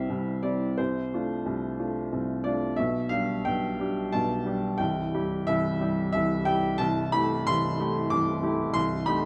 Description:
classical, romantic character piece for solo piano; 90 BPM; 3/4; rubato; C major; A4 = 435 Hz
warm baby grand piano; solo; 0.0-9.3 s; C1 to D6; -28 LUFS; equal
moderate large studio reverb, RT60 0.8 s; dark, warm production; -28 LUFS; mono
0.0-9.3 A section
0.0 C; 0.8 Dm7/C; 2.8 G/B; 4.8 C; 6.8 Am7/C
0.09 | 0.79 1.46 2.12 | 2.78 3.45 4.12 | 4.80 5.47 6.13 | 6.80 7.47 8.12 | 8.76

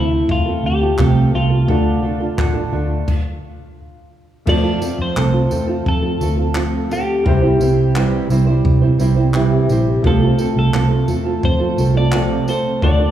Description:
acoustic pop; 86 BPM; 4/4; straight; F major; A4 = 440 Hz
twelve-string electric guitar; melody; 0.0-13.1 s; E4 to D5; -22 LUFS; left 2 dB
dark upright piano; accompaniment; 0.0-13.1 s; G3 to D5; -28 LUFS; left 2 dB
nylon-string guitar; accompaniment; 0.0-13.1 s; C3 to C5; -20 LUFS; right 3 dB
vintage muted fingered electric bass; bass; 0.0-13.1 s; A1 to C3; -18 LUFS; right 1 dB
compact cocktail drum kit; drums; 0.3-13.0 s; crash cymbal, handclaps, kick drum, tambourine; -21 LUFS; equal
vibraphone with soft mallets; second line; 9.2-10.2 s; E4 to G5; -23 LUFS; left 2 dB
moderate concert hall reverb, RT60 2.3 s; recorded in a church or concert hall, small room ambience; -14 LUFS; side -11 dB against mid
0.0-4.5 A section; 4.5-13.1 B section
stop 3.1-4.5
0.0 F; 1.7 Dm; 4.5 F; 7.3 C; 10.0 F/C
0.29 0.99 | 1.68 2.38 3.08 3.77 | 4.47 5.17 5.87 6.56 | 7.26 7.95 8.65 9.35 | 10.04 10.74 11.44 12.13 | 12.83

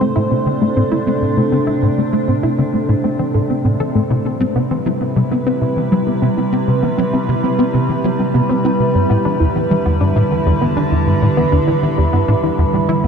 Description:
ambient, sequencer-driven space music; 99 BPM; 4/4; straight; A minor; A4 = 439 Hz
evolving wavetable pad; sustained chords; 0.0-13.1 s; C3 to C5; -17 LUFS; right 1 dB; chorus, built-in reverb
wide unison pluck; arpeggios; 0.0-13.1 s; G3 to A4; -21 LUFS; moving between left 5 dB and right 3 dB; auto-pan, ping-pong delay
tight sequencer bass; riff; 0.0-13.1 s; E2 to C4; -17 LUFS; equal; ensemble chorus, ping-pong delay
wet huge ambient reverb, RT60 7.8 s; dark, warm production; -13 LUFS; side -6 dB against mid
0.0-13.1 A section
filter sweep on synth arpeggio sound 0.0-13.1
0.0 Am; 4.1 Cmaj7; 9.0 Em7
0.47 1.07 | 1.68 2.29 2.89 3.50 | 4.10 4.71 5.32 5.92 | 6.53 7.13 7.74 8.35 | 8.95 9.56 10.16 10.77 | 11.38 11.98 12.59

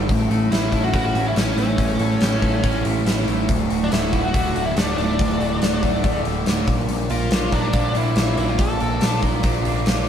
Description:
classic rock; 141 BPM; 4/4; straight; A4 = 440 Hz
distorted electric guitar; riff; 0.0-10.1 s; D2 to Bb4; -26 LUFS; left 6 dB; distortion
overdriven semi-hollow guitar; riff; 0.0-10.1 s; D2 to Bb4; -26 LUFS; right 9 dB
growling picked electric bass; bass; 0.0-10.1 s; D1 to Bb1; -24 LUFS; equal; overdrive
huge arena drum kit; drums; 0.1-10.0 s; hi-hat, kick drum, snare drum; -22 LUFS; equal
octave-fuzz lead guitar; melody; 0.5-9.2 s; C#4 to A4; -26 LUFS; left 1 dB; distortion
light reverb; band playing live in one room; -18 LUFS; side -9 dB against mid
0.1-10.1 A section
0.1 A; 3.5 D; 6.7 Bb
| 0.10 0.52 0.94 1.37 | 1.79 2.22 2.64 3.07 | 3.49 3.92 4.34 4.77 | 5.19 5.62 6.04 6.47 | 6.89 7.32 7.74 8.17 | 8.59 9.02 9.44 9.87

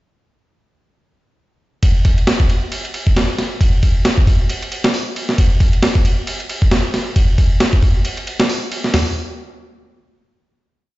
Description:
breakbeat; 135 BPM; 4/4; swing 57% on 16ths
breakbeat sampler-style drum kit; drums; 1.8-9.1 s; hi-hat, kick drum, ride cymbal, snare drum, toms; -14 LUFS; equal
light reverb; played on a big sound system in a bare room, stone room reverb, nothing above 7.6 kHz; -14 LUFS; side -18 dB against mid
1.8-8.9 groove; 8.9-11.0 final hit
| 1.83 2.27 2.72 3.16 | 3.61 4.05 4.50 4.94 | 5.38 5.83 6.27 6.72 | 7.16 7.61 8.05 8.49 | 8.94

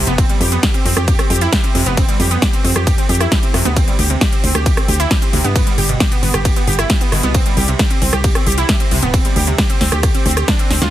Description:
uplifting trance; 134 BPM; 4/4; straight; A4 = 444 Hz
solid FM bass; bass; 0.0-10.9 s; D1 to G2; -17 LUFS; equal; sidechain pumping
wide unison pluck; arpeggios; 0.1-10.9 s; B2 to G4; -20 LUFS; right 3 dB; sidechain pumping, ping-pong delay
big-room dance drum kit; drums; 0.1-10.9 s; hi-hat, ride cymbal, rim click, snare drum; -19 LUFS; equal; overdrive, small room reverb
electronic kick drum; drums; 0.2-10.6 s; -16 LUFS; equal; overdrive, small room reverb
little or no reverb; dense, heavily limited modern master, faint mains hum; -12 LUFS; side -13 dB against mid
0.0-10.9 A section
drum fill 10.7
0.2 Fsus2; 3.8 N.C.; 5.6 G; 7.3 C5; 9.1 N.C.
| 0.18 0.63 1.08 1.53 | 1.97 2.42 2.87 3.32 | 3.77 4.21 4.66 5.11 | 5.56 6.00 6.45 6.90 | 7.35 7.79 8.24 8.69 | 9.14 9.59 10.03 10.48

